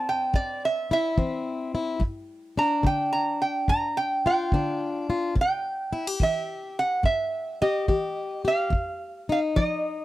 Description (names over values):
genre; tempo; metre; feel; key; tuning
acoustic country blues, solo or duo; 72 BPM; 4/4; swing 68% on 8ths; C mixolydian; A4 = 436 Hz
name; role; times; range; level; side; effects
lap resonator guitar; melody; 0.0-10.0 s; D5 to Bb5; -25 LUFS; right 2 dB; none
fingerpicked plugged-in swing-style acoustic guitar; accompaniment; 0.0-10.0 s; F2 to G4; -28 LUFS; left 3 dB; none
kick drum; drums; 0.3-9.8 s; none; -24 LUFS; equal; none
room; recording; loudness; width
light reverb; dry, close 1970s-style studio recording; -23 LUFS; side -16 dB against mid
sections
0.0-5.4 A section; 5.4-10.0 B section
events
resonator guitar played with a steel bar solo 0.0-5.4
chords
0.0 C; 2.0 G5; 5.4 C; 8.7 F5